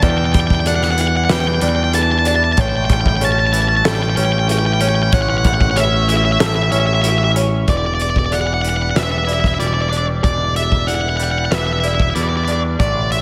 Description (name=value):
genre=post-rock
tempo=94 BPM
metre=4/4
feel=straight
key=E dorian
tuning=A4 = 439 Hz
part: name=octave-fuzz lead guitar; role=melody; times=0.0-13.2 s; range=D5 to A5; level=-21 LUFS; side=equal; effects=distortion, digital delay
part: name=felt-muted upright piano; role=arpeggios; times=0.0-13.2 s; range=A4 to D5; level=-28 LUFS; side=equal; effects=slapback echo, digital delay
part: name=twangy electric guitar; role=arpeggios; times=0.0-13.2 s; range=E2 to E4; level=-28 LUFS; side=equal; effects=analog chorus, slapback echo, digital delay
part: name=growling picked electric bass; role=bass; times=0.0-13.2 s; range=E1 to E2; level=-21 LUFS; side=equal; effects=overdrive
part: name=loose indie drum kit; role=drums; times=0.0-13.2 s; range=hi-hat, kick drum, snare drum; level=-23 LUFS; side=equal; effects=none
room=light reverb, studio reverb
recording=none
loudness=-16 LUFS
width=mono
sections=0.0-7.7 A section; 7.7-13.2 B section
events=none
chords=0.0 Em7; 2.6 A7; 7.7 Em7